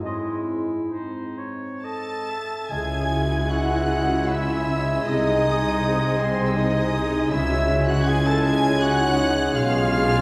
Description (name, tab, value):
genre	classical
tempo	62-82 BPM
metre	3/4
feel	rubato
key	C# minor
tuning	A4 = 440 Hz
part	hollow small flute group	second line	0.0-10.2 s	B#4 to B#5	-34 LUFS	equal	none
part	warm clarinet	second line	0.0-10.2 s	D#4 to E5	-35 LUFS	equal	none
part	warm bassoon	accompaniment	0.0-10.2 s	G#3	-35 LUFS	equal	none
part	mellow French horn section	sustained chords	0.0-10.2 s	G#3 to E4	-32 LUFS	equal	none
part	concert harp	arpeggios	0.0-10.2 s	G#2 to C#5	-33 LUFS	equal	none
part	clear oboe	second line	0.1-10.2 s	B#4 to G#5	-35 LUFS	equal	none
part	rich studio violin section	melody	1.8-10.2 s	B#5 to A6	-34 LUFS	equal	none
part	warm studio violin section	second line	1.8-10.2 s	B#4 to A5	-34 LUFS	equal	none
part	dark trumpet	stabs	1.8-10.2 s	B#3 to A4	-30 LUFS	equal	none
part	warm studio viola section	accompaniment	2.7-10.2 s	B#3 to G#4	-31 LUFS	equal	none
part	mellow tuba	bass	2.7-10.2 s	B1 to C#2	-32 LUFS	equal	none
part	rich studio cello section	bass	2.7-10.2 s	B2 to C#3	-32 LUFS	equal	none
part	rich studio double bass section	bass	2.7-10.2 s	B1 to C#2	-31 LUFS	equal	none
room	wet scoring stage reverb, RT60 2.1 s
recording	heard from further back in the room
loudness	-22 LUFS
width	mono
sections	0.0-2.7 A section; 2.7-10.2 B section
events	none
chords	0.0 G#; 2.7 C#m; 5.1 G#/B#; 7.3 C#m; 9.6 C#7/B